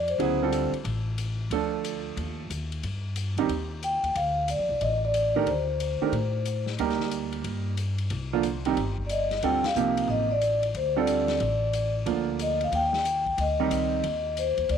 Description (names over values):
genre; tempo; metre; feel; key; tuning
modal jazz; 182 BPM; 4/4; swing 64% on 8ths; unclear; A4 = 440 Hz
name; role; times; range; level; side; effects
vibraphone with soft mallets; melody; 0.0-0.7, 3.8-6.6, 9.1-14.8 s; C5 to G5; -26 LUFS; left 3 dB; none
upright bass; bass; 0.0-14.8 s; G1 to A2; -31 LUFS; left 1 dB; none
vintage drum kit; drums; 0.1-14.8 s; hi-hat, kick drum, ride cymbal, snare drum; -39 LUFS; left 9 dB; none
clear grand piano; accompaniment; 0.2-14.0 s; C3 to Bb4; -28 LUFS; right 10 dB; none
room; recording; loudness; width
moderate spring reverb, RT60 1.8 s, small room ambience; 1960s-style stereo with parts hard left and right; -24 LUFS; side -8 dB against mid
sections
0.0-14.8 A section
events
band accent 9.6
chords
0.0 Dm7; 1.5 Cm/D (rootless); 4.2 D7(no3); 6.8 Cm/D; 9.4 Dm7; 12.1 Cm/D